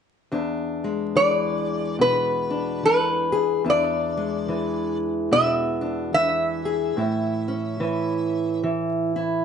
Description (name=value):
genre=acoustic country blues, solo or duo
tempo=72 BPM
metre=4/4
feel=swing 60% on 8ths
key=E mixolydian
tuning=A4 = 440 Hz
part: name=fingerpicked steel-string acoustic guitar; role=accompaniment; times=0.3-9.4 s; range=E2 to G#4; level=-24 LUFS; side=left 1 dB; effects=none
part: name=metal-body resonator slide guitar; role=melody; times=1.2-8.6 s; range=B4 to E5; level=-21 LUFS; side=equal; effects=slapback echo, plate reverb
room=moderate studio reverb, RT60 0.6 s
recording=vinyl crackle, nothing above 10.4 kHz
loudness=-21 LUFS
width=side -7 dB against mid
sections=0.3-9.4 A section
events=none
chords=0.3 E7; 7.0 A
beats=| 0.33 1.16 2.00 2.83 | 3.66 4.49 5.32 6.16 | 6.99 7.82 8.65